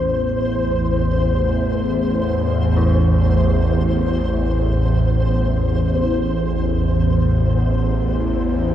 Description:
dark ambient drone; free time; A4 = 439 Hz
dark detuned synth bell; arpeggios; 0.0-8.7 s; E4; -38 LUFS; left 1 dB
bowed-like drone; drone; 0.0-8.7 s; A1 to E2; -17 LUFS; equal; built-in reverb, phaser
flickering grainy texture; texture; 0.0-8.7 s; C5; -25 LUFS; left 2 dB; built-in reverb, shimmer reverb
wet huge ambient reverb, RT60 8.0 s; dark, warm production; -16 LUFS; side -11 dB against mid
0.0-8.7 A section
0.0 Am

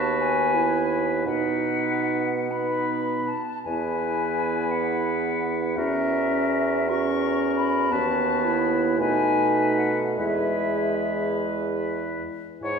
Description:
classical, slow romantic movement for wind quintet; 46-60 BPM (dotted quarters); 6/8; rubato; E major; A4 = 440 Hz
concert flute; melody; 0.0-12.8 s; E5 to C#6; -27 LUFS; left 4 dB
warm oboe; second line; 0.0-12.8 s; A#4 to C#5; -30 LUFS; left 4 dB
bright clarinet; accompaniment; 0.0-12.8 s; D#4 to F#4; -29 LUFS; right 5 dB
warm French horn; accompaniment; 0.0-12.8 s; G#3 to E4; -29 LUFS; right 1 dB
clear bassoon; bass; 0.0-12.8 s; D#2 to B2; -28 LUFS; right 2 dB
wet scoring stage reverb, RT60 2.0 s; heard from further back in the room; -22 LUFS; side -6 dB against mid
0.0-12.6 A section
0.0 B/D#; 1.3 B; 3.7 E; 5.8 F#7/E; 7.9 B7/D#; 9.0 B7; 10.2 E

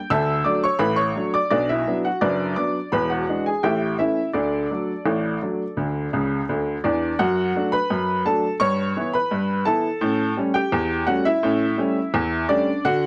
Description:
ragtime piano; 85 BPM; 2/4; straight; D major; A4 = 440 Hz
bright upright piano; solo; 0.0-13.1 s; E1 to E6; -22 LUFS; equal
moderate studio reverb, RT60 0.6 s; -22 LUFS; mono
0.0-7.2 A section; 7.2-13.1 B section
upright piano fill 6.1-7.2
0.1 D; 1.5 Bm; 2.9 E7; 3.6 A7; 4.3 D; 7.2 D/F#; 8.6 Em/G; 10.0 A7

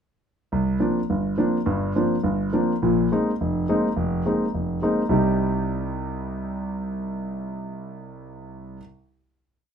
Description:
jazz; 209 BPM; 4/4; swing 61% on 8ths; C minor; A4 = 439 Hz
warm concert grand piano; solo; 0.5-8.8 s; F1 to G4; -22 LUFS; equal
moderate club reverb, RT60 0.5 s; minimal, uncompressed stereo recording; -21 LUFS; side -7 dB against mid
0.5-5.1 A section; 5.1-7.4 final chord
0.5 C9sus4; 2.8 Bb9sus4; 5.1 Cm

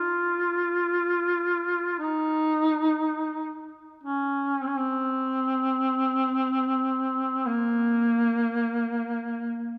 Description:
caucasian folk, Caucasian lament; free time; Bb minor; A4 = 440 Hz
warm duduk; solo; 0.0-9.8 s; Bb3 to F4; -26 LUFS; equal
wet church reverb, RT60 2.8 s; -26 LUFS; mono
0.0-9.8 A section

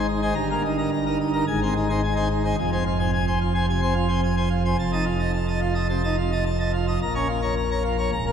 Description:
classical, organ toccata; 108 BPM; 4/4; straight; A4 = 441 Hz
pipe organ, plenum; solo; 0.0-8.3 s; Db1 to Bb5; -21 LUFS; equal
wet church reverb, RT60 2.8 s; heard from further back in the room; -21 LUFS; side -8 dB against mid
0.0-8.3 A section
0.4 Eb/G; 1.5 Ab; 2.6 Fm; 4.8 F7; 7.0 Bbm

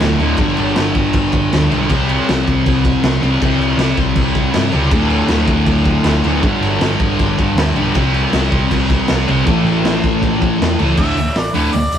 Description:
garage rock duo or trio; 159 BPM; 4/4; straight; A4 = 445 Hz
thick fuzz guitar; riff; 0.0-11.7 s; D2 to C4; -15 LUFS; left 1 dB; distortion
hollow-body short-scale picked electric bass; bass; 0.0-12.0 s; D1 to G2; -20 LUFS; equal
raw garage drum kit; drums; 0.0-12.0 s; crash cymbal, hi-hat, kick drum, snare drum; -18 LUFS; equal
clear harmonica; melody; 11.0-12.0 s; B4 to E5; -20 LUFS; right 1 dB; overdrive
moderate studio reverb, RT60 0.6 s; rough rehearsal-room recording; -12 LUFS; side -9 dB against mid
0.0-11.0 A section; 11.0-12.0 B section
harmonica solo 11.0-12.0
0.4 G5; 1.9 C5; 4.9 D5; 6.4 G5; 7.9 C5; 9.5 A5; 11.0 D5

